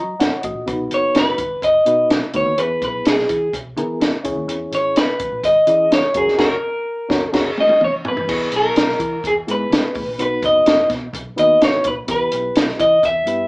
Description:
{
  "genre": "uptempo 1960s-style soul",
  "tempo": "126 BPM",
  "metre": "4/4",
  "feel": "straight",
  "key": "unclear",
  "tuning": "A4 = 440 Hz",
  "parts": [
    { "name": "mellow reed electric piano", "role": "accompaniment", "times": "0.0-13.5 s", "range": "B3 to A#5", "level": "-24 LUFS", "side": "equal", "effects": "fast tremolo" },
    { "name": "vintage muted picked electric bass", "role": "bass", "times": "0.0-13.4 s", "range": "F#1 to F#3", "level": "-30 LUFS", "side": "equal", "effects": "none" },
    { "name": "compact cocktail drum kit", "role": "drums", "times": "0.2-13.4 s", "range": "crash cymbal, hi-hat, kick drum, snare drum, toms", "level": "-20 LUFS", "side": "equal", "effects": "none" },
    { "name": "electric guitar through a small old amp", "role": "melody", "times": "0.9-13.5 s", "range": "G#4 to E5", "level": "-16 LUFS", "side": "equal", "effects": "none" }
  ],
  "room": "light reverb",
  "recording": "band playing live in one room, small speaker sound",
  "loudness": "-15 LUFS",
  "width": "side -27 dB against mid",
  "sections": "0.0-8.3 A section; 8.3-13.5 B section",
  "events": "reed electric piano fill 0.0-0.7, 7.6-8.3; band accent 6.4-8.3; drum fill 7.3-8.3",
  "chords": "0.0 F#; 0.7 B; 2.6 E; 4.3 C#m; 6.2 F#; 8.3 E; 10.2 B; 12.1 Em",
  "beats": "0.20 | 0.68 1.16 1.63 2.11 | 2.58 3.06 3.54 4.01 | 4.49 4.96 5.44 5.92 | 6.39 6.87 7.34 7.82 | 8.29 8.77 9.24 9.72 | 10.19 10.67 11.14 11.62 | 12.09 12.56 13.04"
}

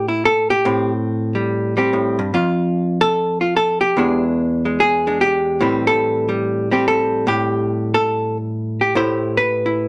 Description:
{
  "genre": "solo jazz",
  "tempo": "145 BPM",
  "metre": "4/4",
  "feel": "swing 65% on 8ths, rubato",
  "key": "A minor",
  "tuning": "A4 = 440 Hz",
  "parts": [
    { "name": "hollow-body jazz guitar", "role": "solo", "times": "0.0-9.9 s", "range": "E2 to C5", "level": "-18 LUFS", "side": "equal", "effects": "none" }
  ],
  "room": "moderate studio reverb, RT60 0.7 s",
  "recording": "none",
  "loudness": "-18 LUFS",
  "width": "mono",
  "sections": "0.0-8.9 A section",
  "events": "hollow-body jazz guitar solo 0.0-9.9",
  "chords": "0.0 Am7; 2.3 N.C.; 4.0 E7#9; 5.6 Am7",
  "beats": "0.23 | 0.65 1.06 1.48 1.90 | 2.32 2.73 3.14 3.55 | 3.96 4.37 4.78 5.19 | 5.60 6.02 6.43 6.85 | 7.26 7.68 8.10 8.52 | 8.95 9.36 9.78"
}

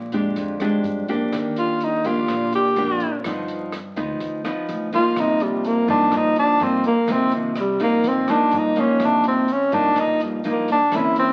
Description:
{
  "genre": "bossa nova",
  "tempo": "125 BPM",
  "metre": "4/4",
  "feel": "straight",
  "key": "C minor",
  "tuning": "A4 = 440 Hz",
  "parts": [
    { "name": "nylon-string guitar", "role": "accompaniment", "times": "0.0-11.3 s", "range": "F2 to G4", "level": "-25 LUFS", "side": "equal", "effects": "none" },
    { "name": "upright bass", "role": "bass", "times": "0.0-11.3 s", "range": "Bb1 to Ab2", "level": "-38 LUFS", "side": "equal", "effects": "none" },
    { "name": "compact cocktail drum kit", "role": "drums", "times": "0.1-11.3 s", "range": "hi-hat, kick drum, rim click", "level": "-40 LUFS", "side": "equal", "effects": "none" },
    { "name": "egg shaker", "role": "percussion", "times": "0.1-11.3 s", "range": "none", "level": "-61 LUFS", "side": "equal", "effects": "none" },
    { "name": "breathy tenor saxophone", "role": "melody", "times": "1.6-11.3 s", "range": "Eb3 to G4", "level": "-21 LUFS", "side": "equal", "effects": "none" }
  ],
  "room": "moderate large studio reverb, RT60 1.2 s",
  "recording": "very old 78 rpm record, vinyl crackle",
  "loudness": "-21 LUFS",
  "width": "mono",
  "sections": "0.0-9.0 A section; 9.0-11.3 A section",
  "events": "tenor saxophone solo 0.0-11.3",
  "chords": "0.0 Bb6; 1.3 Ebmaj7; 3.2 G7b13; 5.2 Cm7",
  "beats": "0.36 0.84 | 1.33 1.81 2.29 2.77 | 3.25 3.73 4.21 4.69 | 5.17 5.65 6.13 6.61 | 7.08 7.57 8.04 8.53 | 9.00 9.48 9.96 10.44 | 10.92"
}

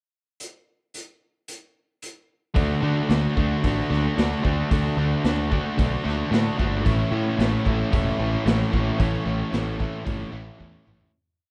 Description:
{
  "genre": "classic rock",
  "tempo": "112 BPM",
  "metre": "4/4",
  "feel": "straight",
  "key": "D major",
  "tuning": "A4 = 440 Hz",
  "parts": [
    { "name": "raw garage drum kit", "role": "drums", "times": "0.4-11.1 s", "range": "hi-hat, kick drum, snare drum, toms", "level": "-28 LUFS", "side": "equal", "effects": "none" },
    { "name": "distorted electric guitar", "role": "riff", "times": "2.5-11.1 s", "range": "A2 to F#4", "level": "-31 LUFS", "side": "equal", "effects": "distortion" },
    { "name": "overdriven semi-hollow guitar", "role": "riff", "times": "2.5-11.1 s", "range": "A2 to D4", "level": "-29 LUFS", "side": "equal", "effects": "none" },
    { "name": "growling fingered electric bass", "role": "bass", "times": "2.6-11.0 s", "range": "E1 to D3", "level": "-29 LUFS", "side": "equal", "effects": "overdrive" }
  ],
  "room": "small room ambience",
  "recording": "none",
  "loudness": "-23 LUFS",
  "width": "mono",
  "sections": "0.4-2.5 pickup bar; 2.5-11.1 verse",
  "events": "fade-out 9.0-11.1; drum fill 10.6-11.1",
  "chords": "0.4 N.C.; 2.5 D; 6.8 A",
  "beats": "| 0.38 0.92 1.46 2.00 | 2.55 3.09 3.63 4.17 | 4.70 5.24 5.78 6.32 | 6.85 7.38 7.92 8.45 | 8.99 9.52 10.05 10.59"
}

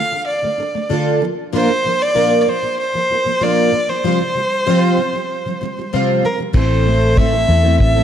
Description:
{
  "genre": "acoustic pop",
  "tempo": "96 BPM",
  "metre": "4/4",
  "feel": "straight",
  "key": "unclear",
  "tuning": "A4 = 442 Hz",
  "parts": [
    { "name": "rich violin", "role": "melody", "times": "0.0-8.0 s", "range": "Bb4 to F5", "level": "-18 LUFS", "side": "equal", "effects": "slapback echo" },
    { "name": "picked plugged-in twelve-string acoustic guitar", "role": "accompaniment", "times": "0.0-8.0 s", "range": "A2 to C5", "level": "-18 LUFS", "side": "equal", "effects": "double-tracked left and right" },
    { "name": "vintage muted fingered electric bass", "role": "bass", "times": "6.5-8.0 s", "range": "A1 to E2", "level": "-15 LUFS", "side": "equal", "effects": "none" },
    { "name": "cloth-damped thuddy drum kit", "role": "drums", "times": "6.5-7.9 s", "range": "crash cymbal, kick drum", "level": "-16 LUFS", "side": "equal", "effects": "none" }
  ],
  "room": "moderate echo chamber reverb, RT60 2.1 s",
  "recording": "dark, warm production",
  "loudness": "-14 LUFS",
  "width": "side -9 dB against mid",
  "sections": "0.0-6.5 A section; 6.5-8.0 B section",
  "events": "none",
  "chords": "0.0 Dm; 1.2 Bb; 4.0 Csus4; 6.5 Am",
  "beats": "0.27 0.90 | 1.52 2.15 2.78 3.41 | 4.03 4.66 5.29 5.92 | 6.54 7.17 7.80"
}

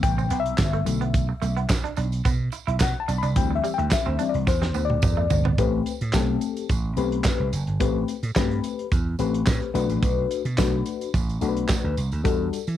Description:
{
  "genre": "early-eighties boogie funk",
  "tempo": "108 BPM",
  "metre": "4/4",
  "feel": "straight",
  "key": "unclear",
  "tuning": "A4 = 445 Hz",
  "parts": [
    { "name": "FM electric piano with auto-pan", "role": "accompaniment", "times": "0.0-12.6 s", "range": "C3 to B5", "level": "-26 LUFS", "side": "left 9 dB", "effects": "phaser" },
    { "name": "semi-hollow electric guitar", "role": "riff", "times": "0.0-5.5 s", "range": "G3 to E4", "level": "-32 LUFS", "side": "right 10 dB", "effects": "wide subtle chorus" },
    { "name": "vintage slap bass", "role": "bass", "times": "0.0-12.8 s", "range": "F#1 to E3", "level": "-26 LUFS", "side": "right 2 dB", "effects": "none" },
    { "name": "modern studio drum kit", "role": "drums", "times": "0.0-12.8 s", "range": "handclaps, hi-hat, kick drum, snare drum, toms", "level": "-24 LUFS", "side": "right 1 dB", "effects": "cassette tape" },
    { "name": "tambourine", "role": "percussion", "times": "0.0-12.8 s", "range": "none", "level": "-40 LUFS", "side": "right 14 dB", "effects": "none" }
  ],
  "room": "little or no reverb",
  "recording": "home recording on cassette",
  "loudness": "-21 LUFS",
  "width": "side -12 dB against mid",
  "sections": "0.0-5.6 A section; 5.6-12.8 B section",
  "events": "FM electric piano solo 0.0-5.6; drum fill 4.5-5.6",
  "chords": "0.0 Am9; 0.9 Bm7; 3.4 D9sus4; 5.6 Am9; 9.8 Bm7; 12.2 Em11",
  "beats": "0.03 0.58 | 1.14 1.69 2.25 2.81 | 3.36 3.92 4.47 5.03 | 5.58 6.14 6.69 7.25 | 7.80 8.36 8.92 9.47 | 10.03 10.58 11.14 11.69 | 12.25"
}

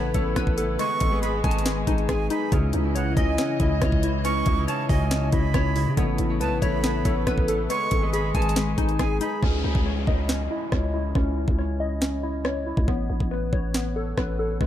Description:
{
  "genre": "hip hop, trap",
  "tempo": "139 BPM",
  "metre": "4/4",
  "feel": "half-time",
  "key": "C# minor",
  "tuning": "A4 = 440 Hz",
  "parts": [
    { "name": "breathy bright jazz flute", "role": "second line", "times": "0.0-9.4 s", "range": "F#5 to C#6", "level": "-31 LUFS", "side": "right 6 dB", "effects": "analog delay" },
    { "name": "warm chamber string section", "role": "sustained chords", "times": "0.0-9.4 s", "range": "C#3 to D#5", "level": "-34 LUFS", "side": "left 2 dB", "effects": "none" },
    { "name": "glassy digital keys", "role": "arpeggios", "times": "0.0-14.7 s", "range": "G#3 to G#5", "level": "-28 LUFS", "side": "left 2 dB", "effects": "chorus, low-pass filter, analog delay" },
    { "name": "growling 808-style bass", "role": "bass", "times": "0.0-14.7 s", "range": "G#1 to C#3", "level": "-27 LUFS", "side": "equal", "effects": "none" },
    { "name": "concert harp", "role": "accompaniment", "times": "0.1-9.5 s", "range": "C#3 to D#5", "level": "-30 LUFS", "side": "equal", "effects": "low-pass filter, analog delay" },
    { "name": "trap drum kit", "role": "drums", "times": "0.1-14.7 s", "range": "hi-hat, kick drum, rim click, snare drum", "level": "-26 LUFS", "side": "equal", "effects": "analog delay" },
    { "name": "downlifter", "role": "sound effects", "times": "9.4-12.9 s", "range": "none", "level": "-36 LUFS", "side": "left 1 dB", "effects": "none" }
  ],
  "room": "studio ambience",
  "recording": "echo-heavy mix",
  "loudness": "-21 LUFS",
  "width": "side -11 dB against mid",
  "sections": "0.0-9.4 A section; 9.4-14.7 B section",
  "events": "hi-hats muted 9.4-14.7; filter sweep 9.4-14.7",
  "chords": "0.0 Aadd9; 0.8 G#m; 2.5 C#madd9; 6.0 Aadd9; 7.7 G#m; 9.4 C#madd9; 12.9 Aadd9",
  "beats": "0.36 | 0.79 1.23 1.66 2.09 | 2.52 2.95 3.38 3.81 | 4.25 4.68 5.11 5.54 | 5.97 6.41 6.84 7.27 | 7.70 8.13 8.56 8.99 | 9.43 9.86 10.29 10.72 | 11.15 11.59 12.02 12.45 | 12.88 13.31 13.74 14.18 | 14.61"
}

